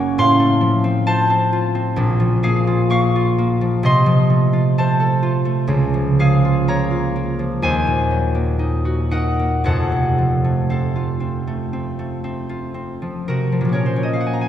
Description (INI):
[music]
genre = classical, solo harp piece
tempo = 56-68 BPM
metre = 4/4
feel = rubato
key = Bb minor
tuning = A4 = 441 Hz
[part]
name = concert harp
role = solo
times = 0.0-14.5 s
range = F1 to Db6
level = -16 LUFS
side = equal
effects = none
[sound]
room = wet concert hall reverb, RT60 2.2 s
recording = recorded in a church or concert hall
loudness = -16 LUFS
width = side -10 dB against mid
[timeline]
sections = 0.0-13.7 A section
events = none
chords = 0.2 F/A; 2.0 Bbm; 3.8 F7/C; 5.7 Bbm/Db; 7.6 Ebm; 9.6 F; 13.7 Bbm